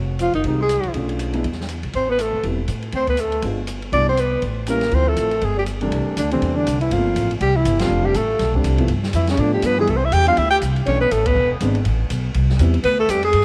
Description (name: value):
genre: jazz, small-group swing and bop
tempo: 242 BPM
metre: 4/4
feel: swing 59% on 8ths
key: C major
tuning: A4 = 440 Hz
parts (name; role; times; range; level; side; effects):
- upright bass; bass; 0.0-13.4 s; E1 to A2; -24 LUFS; equal; none
- breathy alto saxophone; melody; 0.2-13.4 s; C4 to G5; -22 LUFS; equal; none
- breathy tenor saxophone; second line; 0.2-13.4 s; C3 to G4; -30 LUFS; equal; none
- open jazz drum kit; drums; 0.2-13.4 s; hi-hat, kick drum, ride cymbal, snare drum; -32 LUFS; equal; none
- warm concert grand piano; accompaniment; 0.5-12.7 s; C2 to G4; -28 LUFS; equal; none
room: light reverb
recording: none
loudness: -19 LUFS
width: mono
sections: 0.0-5.9 A section; 5.9-13.4 B section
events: band accent 7.8, 11.2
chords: 0.0 Fm7; 0.9 Bm7b5; 1.4 E5; 1.9 Am9; 2.9 D5; 3.4 G7b9; 3.9 Cmaj7; 4.4 A7b9; 4.9 Dm7; 5.4 G5; 5.9 C69; 6.9 Gm11; 7.4 C; 7.9 F69; 8.9 G9; 9.9 Cadd9; 10.9 Bm11; 11.4 E7b13; 11.9 Am9; 12.8 Dm